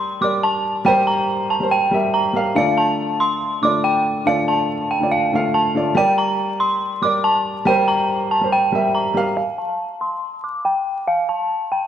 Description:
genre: hip hop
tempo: 141 BPM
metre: 4/4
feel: half-time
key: unclear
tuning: A4 = 439 Hz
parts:
  - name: dark detuned synth bell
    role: melody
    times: 0.0-11.9 s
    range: F5 to D6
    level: -18 LUFS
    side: equal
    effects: chorus, low-pass filter, ping-pong delay
  - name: dark baby grand piano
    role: accompaniment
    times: 0.0-9.4 s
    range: D3 to F5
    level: -21 LUFS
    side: equal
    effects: none
room: moderate lush hall reverb, RT60 2.5 s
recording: vinyl crackle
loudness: -16 LUFS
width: side -10 dB against mid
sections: 0.0-9.4 A section; 9.4-11.9 B section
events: filter sweep on synth bell 9.4-11.9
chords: 0.0 Gm; 2.6 Dm; 6.0 Gm; 9.4 N.C.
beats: 0.01 0.43 | 0.86 1.29 1.71 2.14 | 2.56 2.99 3.41 3.84 | 4.26 4.69 5.12 5.54 | 5.97 6.39 6.82 7.24 | 7.67 8.09 8.52 8.95 | 9.37 9.80 10.22 10.65 | 11.07 11.50

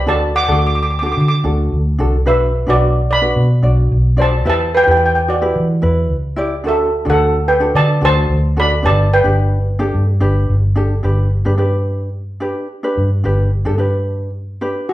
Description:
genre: calypso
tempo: 109 BPM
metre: 4/4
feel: straight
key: G major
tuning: A4 = 440 Hz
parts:
  - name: steel pan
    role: melody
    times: 0.0-10.2, 14.9 s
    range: F#4 to D6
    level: -15 LUFS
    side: right 1 dB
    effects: none
  - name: vintage muted fingered electric bass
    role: bass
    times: 0.0-14.7 s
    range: G1 to E3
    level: -15 LUFS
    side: equal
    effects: none
  - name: ukulele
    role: accompaniment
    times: 0.1-14.9 s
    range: D4 to D5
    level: -21 LUFS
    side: equal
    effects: none
room: moderate large studio reverb, RT60 0.8 s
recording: band playing live in one room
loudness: -13 LUFS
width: side -14 dB against mid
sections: 0.0-11.0 A section; 11.0-14.9 B section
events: none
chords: 0.1 D; 2.3 Bm; 4.5 Em; 6.7 D; 8.8 G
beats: | 0.08 0.62 1.17 1.72 | 2.27 2.81 3.36 3.91 | 4.46 5.01 5.55 6.10 | 6.65 7.20 7.75 8.30 | 8.85 9.40 9.95 10.50 | 11.05 11.60 12.15 12.70 | 13.25 13.80 14.36 14.91

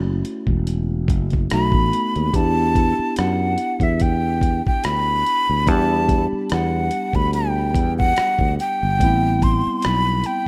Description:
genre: R&B, neo-soul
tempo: 72 BPM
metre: 4/4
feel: swing 54% on 16ths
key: E minor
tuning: A4 = 440 Hz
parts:
  - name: barky tine electric piano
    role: accompaniment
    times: 0.0-10.5 s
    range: G3 to G4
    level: -27 LUFS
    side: equal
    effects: overdrive
  - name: sustaining fretless electric bass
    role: bass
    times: 0.0-10.2 s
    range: E1 to F#2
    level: -24 LUFS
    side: equal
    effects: none
  - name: dusty soul sampler-style drum kit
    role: drums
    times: 0.2-10.5 s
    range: hi-hat, kick drum, rim click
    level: -24 LUFS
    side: equal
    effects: none
  - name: breathy jazz flute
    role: melody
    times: 1.5-10.5 s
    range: E5 to C6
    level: -24 LUFS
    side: equal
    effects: none
room: light reverb, digital ambience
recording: rough home demo mix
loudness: -19 LUFS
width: mono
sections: 0.0-10.5 A section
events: none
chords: 0.0 F#m7; 1.5 B7; 2.3 Em9; 9.0 Am7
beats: 0.67 1.50 | 2.34 3.17 4.00 4.84 | 5.67 6.50 7.34 8.17 | 9.00 9.84

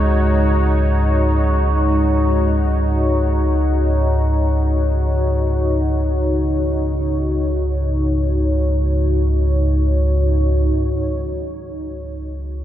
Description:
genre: dark ambient drone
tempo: free time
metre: none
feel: none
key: unclear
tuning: A4 = 440 Hz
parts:
  - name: deep dark ambient pad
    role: sustained chords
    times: 0.0-10.7 s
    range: D#4 to C#5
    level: -21 LUFS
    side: left 2 dB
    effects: chorus, built-in reverb
  - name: deep rumbling drone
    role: drone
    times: 0.0-12.6 s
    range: C#2 to G#2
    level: -17 LUFS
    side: equal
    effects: built-in reverb
  - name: bronze singing bowl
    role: texture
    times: 0.0-10.8 s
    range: G#4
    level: -38 LUFS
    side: left 4 dB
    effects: none
room: wet cathedral reverb, RT60 5.6 s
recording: none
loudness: -15 LUFS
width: side -12 dB against mid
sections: 0.0-10.7 A section; 10.7-12.6 B section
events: none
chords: 0.0 C#sus2; 10.7 C#5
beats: free time

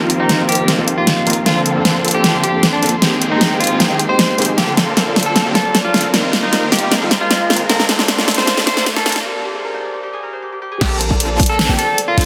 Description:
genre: future bass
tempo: 154 BPM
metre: 4/4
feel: half-time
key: Bb major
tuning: A4 = 435 Hz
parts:
  - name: tine electric piano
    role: accompaniment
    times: 0.0-4.6 s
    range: F3 to G5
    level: -23 LUFS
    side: equal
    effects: sidechain pumping, digital delay
  - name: dark studio string section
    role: sustained chords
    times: 0.0-9.2 s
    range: Bb3 to C6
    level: -30 LUFS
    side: equal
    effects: none
  - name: supersaw chords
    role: riff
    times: 0.0-12.3 s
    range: D3 to Bb4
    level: -23 LUFS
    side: equal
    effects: phaser, sidechain pumping, low-pass filter
  - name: warm 808-style bass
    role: bass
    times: 0.0-12.3 s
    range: Bb1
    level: -26 LUFS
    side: equal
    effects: none
  - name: riser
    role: sound effects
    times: 3.6-9.3 s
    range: none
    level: -32 LUFS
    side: equal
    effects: none
  - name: big-room dance drum kit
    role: drums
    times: 0.1-12.3 s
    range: crash cymbal, hi-hat, snare drum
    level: -18 LUFS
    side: equal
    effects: soft clipping on snare
  - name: clean electric guitar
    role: melody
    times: 0.2-12.3 s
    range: D4 to C5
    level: -22 LUFS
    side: equal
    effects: sidechain pumping, digital delay
  - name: Celtic harp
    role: arpeggios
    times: 4.6-12.3 s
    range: G4 to F5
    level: -27 LUFS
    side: equal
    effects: sidechain pumping, digital delay
  - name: airy dreamy lead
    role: arpeggios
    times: 10.8-12.3 s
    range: G5 to A5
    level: -29 LUFS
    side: equal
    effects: chorus, sidechain pumping
  - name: electronic kick drum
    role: drums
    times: 10.8-11.5 s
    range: none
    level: -18 LUFS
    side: equal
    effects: none
room: moderate huge ambient reverb, RT60 3.9 s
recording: dense, heavily limited modern master, high-pass filter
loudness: -15 LUFS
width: mono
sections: 0.0-10.8 A section; 10.8-12.3 B section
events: build-up 0.0-10.8; drum fill 0.0-9.3; filter sweep on supersaw synth 0.0-10.8; break 9.3-10.8; drop 10.8-12.3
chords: 0.0 F7sus4/Bb; 1.5 Bbmaj9; 3.0 Abmaj9/Bb; 4.6 Bbmaj9; 6.1 F7sus4/Bb; 7.7 Bbmaj9; 9.3 Abmaj9; 10.8 Bbmaj9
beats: 0.29 0.68 1.07 | 1.46 1.85 2.24 2.63 | 3.02 3.41 3.80 4.19 | 4.58 4.97 5.36 5.75 | 6.14 6.53 6.92 7.30 | 7.70 8.09 8.47 8.86 | 9.25 9.64 10.03 10.42 | 10.81 11.20 11.59 11.98

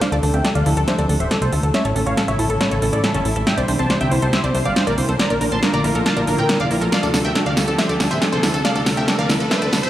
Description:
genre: uplifting trance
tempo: 139 BPM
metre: 4/4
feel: straight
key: D minor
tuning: A4 = 439 Hz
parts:
  - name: supersaw stab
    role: melody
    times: 0.0-9.9 s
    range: C#4 to C6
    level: -22 LUFS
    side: equal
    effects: low-pass filter, digital delay
  - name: dark chamber string section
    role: sustained chords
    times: 0.0-9.9 s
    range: C3 to Bb4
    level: -25 LUFS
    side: left 1 dB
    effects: none
  - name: analog pluck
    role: arpeggios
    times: 0.0-9.9 s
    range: C#3 to D5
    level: -25 LUFS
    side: right 1 dB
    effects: chorus, digital delay
  - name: big-room dance drum kit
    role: drums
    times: 0.0-9.9 s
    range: hi-hat, snare drum, tambourine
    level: -22 LUFS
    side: equal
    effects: small room ambience
  - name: riser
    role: sound effects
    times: 4.5-9.9 s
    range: none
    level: -30 LUFS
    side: right 1 dB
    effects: none
  - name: plucky analog bass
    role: bass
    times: 0.1-9.9 s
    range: D1 to Bb2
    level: -22 LUFS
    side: equal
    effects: none
room: light reverb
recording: played on a big sound system in a bare room, large studio reverb, high-pass filter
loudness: -16 LUFS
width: side -13 dB against mid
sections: 0.0-9.9 A section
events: build-up 0.0-9.9; drum fill 0.0-9.9; filter sweep on supersaw synth 0.0-9.9; filter sweep 0.0-9.9; riser 4.5-9.9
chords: 0.0 Dm7; 1.7 A; 3.5 C; 5.2 Bb; 6.9 Dm7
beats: | 0.01 0.45 0.88 1.31 | 1.74 2.17 2.60 3.04 | 3.47 3.90 4.33 4.76 | 5.20 5.63 6.06 6.49 | 6.92 7.35 7.79 8.22 | 8.65 9.08 9.51

